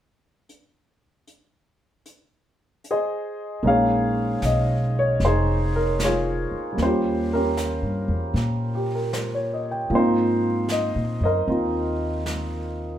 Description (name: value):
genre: jazz ballad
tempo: 77 BPM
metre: 4/4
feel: swing 66% on 8ths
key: unclear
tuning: A4 = 440 Hz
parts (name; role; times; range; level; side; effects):
- jazz brush drum kit; drums; 0.5-13.0 s; brushed snare drum, hi-hat, snare drum; -35 LUFS; equal; none
- warm concert grand piano; accompaniment; 2.9-13.0 s; F3 to G5; -22 LUFS; equal; none
- upright bass; bass; 3.6-13.0 s; F1 to Bb2; -26 LUFS; equal; none
room: moderate studio reverb, RT60 0.7 s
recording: band playing live in one room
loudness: -21 LUFS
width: side -11 dB against mid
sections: 0.5-3.6 A section; 3.6-13.0 B section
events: none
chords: 0.5 Ab; 3.6 Bbm11; 6.8 Eb7; 9.9 Ab69